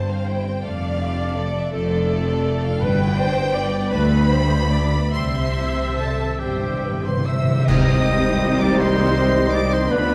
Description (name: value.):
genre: classical, slow romantic movement for symphony orchestra.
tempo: 46-57 BPM (dotted quarters).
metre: 6/8.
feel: rubato.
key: C major.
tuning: A4 = 440 Hz.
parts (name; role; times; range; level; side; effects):
rich symphonic violin section; melody; 0.0-10.1 s; D5 to E6; -32 LUFS; equal; none.
rich symphonic violin section; second line; 0.0-10.1 s; G3 to C5; -32 LUFS; equal; none.
rich symphonic viola section; accompaniment; 0.0-10.1 s; G3 to E5; -28 LUFS; equal; none.
rich symphonic cello section; bass; 0.0-10.1 s; D2 to D3; -27 LUFS; equal; none.
rich symphonic double bass section; bass; 0.0-10.1 s; F1 to D2; -26 LUFS; equal; none.
timpani; percussion; 2.8-8.8 s; G2 to C3; -27 LUFS; equal; none.
cymbal swell, clash cymbals and concert bass drum; percussion; 5.1-9.1 s; none; -31 LUFS; equal; none.
flute section; second line; 6.0-10.1 s; G4 to E5; -30 LUFS; equal; none.
warm oboe; second line; 6.0-10.1 s; G4 to E5; -30 LUFS; equal; none.
warm clarinet; second line; 7.7-10.1 s; D5 to G5; -30 LUFS; equal; none.
mellow French horn section; sustained chords; 7.7-10.1 s; C4 to C5; -30 LUFS; equal; none.
warm trombone section; sustained chords; 7.7-10.1 s; D3 to G3; -28 LUFS; equal; none.
room: wet scoring stage reverb, RT60 1.9 s.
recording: vinyl crackle.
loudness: -20 LUFS.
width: mono.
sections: 0.0-7.7 A section; 7.7-10.1 B section.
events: timpani fill 5.1-7.7; band accent 7.7-8.4.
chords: 0.0 C; 0.6 Dm/F; 2.8 G; 5.1 C; 7.7 Cm.